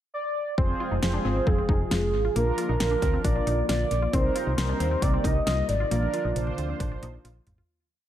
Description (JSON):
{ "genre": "synth-pop", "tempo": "135 BPM", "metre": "4/4", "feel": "straight", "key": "unclear", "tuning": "A4 = 441 Hz", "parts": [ { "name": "warm velvety synth lead", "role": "melody", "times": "0.1-7.2 s", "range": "Ab4 to Eb5", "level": "-29 LUFS", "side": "right 1 dB", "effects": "chorus, tape echo" }, { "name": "mellow synth brass", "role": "accompaniment", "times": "0.6-7.1 s", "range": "C4 to C5", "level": "-33 LUFS", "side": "right 4 dB", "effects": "chorus, tape echo" }, { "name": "warm analog pad", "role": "sustained chords", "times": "0.6-7.7 s", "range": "C3 to F4", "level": "-34 LUFS", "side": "left 2 dB", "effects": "chorus" }, { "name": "wide unison pluck", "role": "arpeggios", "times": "0.6-7.6 s", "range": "Bb3 to F4", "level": "-36 LUFS", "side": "left 1 dB", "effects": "tape echo" }, { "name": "solid FM bass", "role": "bass", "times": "0.6-7.6 s", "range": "F1 to Eb2", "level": "-28 LUFS", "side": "equal", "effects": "none" }, { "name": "pop drum kit", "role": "drums", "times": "0.6-7.7 s", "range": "hi-hat, kick drum, snare drum, toms", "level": "-28 LUFS", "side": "equal", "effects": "none" } ], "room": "light reverb, digital ambience", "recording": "echo-heavy mix", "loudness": "-23 LUFS", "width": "side -11 dB against mid", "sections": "0.0-0.6 pickup bar; 0.6-7.7 pre-chorus", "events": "fade-out 5.9-7.7; drum fill 5.9-7.7", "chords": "0.0 N.C.; 0.6 Fm; 2.4 Bb; 4.1 Cm7; 5.9 Bb", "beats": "0.14 | 0.58 1.02 1.47 1.91 | 2.36 2.80 3.25 3.69 | 4.13 4.58 5.02 5.47 | 5.91 6.36 6.80 7.25" }